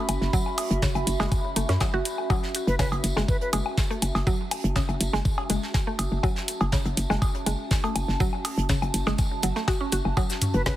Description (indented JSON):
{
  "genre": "minimal techno",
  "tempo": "122 BPM",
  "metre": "4/4",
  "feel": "straight",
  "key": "F# minor",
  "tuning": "A4 = 440 Hz",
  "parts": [
    { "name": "mallet-like synth pluck", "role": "riff", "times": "0.0-10.8 s", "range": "C#3 to F#4", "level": "-31 LUFS", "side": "equal", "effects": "chorus, phaser, cassette tape, sidechain pumping, ping-pong delay" },
    { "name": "warbly tape-like pad", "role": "texture", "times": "0.0-10.8 s", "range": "C#4 to B5", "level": "-34 LUFS", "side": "right 2 dB", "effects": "chorus, built-in reverb, sidechain pumping" },
    { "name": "hollow knocking FM bass", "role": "bass", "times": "0.1-10.7 s", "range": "F#1 to F#2", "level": "-26 LUFS", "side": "equal", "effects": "sidechain pumping" },
    { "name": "garage drum kit", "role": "drums", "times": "0.1-10.8 s", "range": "hi-hat, shaker, snare drum", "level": "-28 LUFS", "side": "equal", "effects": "none" },
    { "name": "soft brush drum kit", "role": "drums", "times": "0.1-10.8 s", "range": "hi-hat, snare drum, tambourine", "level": "-36 LUFS", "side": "right 1 dB", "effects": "high-pass filter on hats, high-pass filter on snare, high-pass filter on perc, high-pass filter on room" },
    { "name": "electronic woodblock, cowbell and toms", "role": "percussion", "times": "0.1-10.8 s", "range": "none", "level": "-33 LUFS", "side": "left 2 dB", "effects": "overdrive, digital delay" },
    { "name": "electronic kick drum", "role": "drums", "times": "0.3-10.8 s", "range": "none", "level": "-25 LUFS", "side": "equal", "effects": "none" },
    { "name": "wooden flute", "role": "melody", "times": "2.7-3.5, 10.5-10.7 s", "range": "B4", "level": "-32 LUFS", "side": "left 1 dB", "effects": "digital delay" }
  ],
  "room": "light reverb",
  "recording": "heavily compressed radio sound, multiband compression",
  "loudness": "-23 LUFS",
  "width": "side -14 dB against mid",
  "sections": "0.0-10.8 A section",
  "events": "none",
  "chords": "0.0 F#m7",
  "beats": "| 0.33 0.82 1.32 1.81 | 2.30 2.79 3.29 3.78 | 4.27 4.76 5.25 5.74 | 6.24 6.73 7.22 7.71 | 8.20 8.69 9.19 9.68 | 10.17 10.66"
}